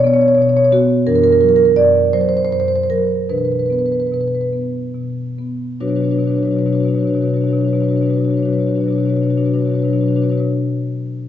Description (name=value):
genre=classical, contemporary piece for solo marimba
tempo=46-60 BPM (dotted quarters)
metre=6/8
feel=rubato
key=B minor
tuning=A4 = 440 Hz
part: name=marimba with soft mallets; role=solo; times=0.0-10.4 s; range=F#2 to D5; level=-14 LUFS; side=equal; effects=none
room=wet recital hall reverb, RT60 1.5 s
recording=dark, warm production, nothing above 7.9 kHz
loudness=-14 LUFS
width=side -10 dB against mid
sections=0.0-5.8 A section; 5.8-10.9 B section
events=slowing down 0.0-5.8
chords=0.0 E5/B; 1.1 F#aug7; 3.3 Bmadd11; 5.8 Bmadd9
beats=0.04 | 1.06 2.13 | 3.29 4.53 | 5.81 7.06 | 8.32 9.59